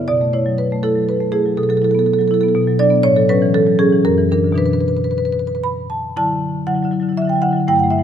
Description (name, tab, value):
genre	classical, contemporary piece for solo marimba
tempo	120 BPM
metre	3/4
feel	rubato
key	B dorian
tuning	A4 = 440 Hz
part	marimba with medium mallets	solo	0.0-8.0 s	F#2 to B5	-14 LUFS	equal	none
room	moderate concert hall reverb, RT60 1.9 s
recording	close, detailed microphones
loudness	-14 LUFS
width	side -9 dB against mid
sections	0.0-6.2 A section; 6.2-8.0 B section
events	none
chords	0.1 B7sus4; 2.6 Bm; 3.1 A6; 4.1 F#aug7; 4.6 Bmadd11; 6.2 Dadd9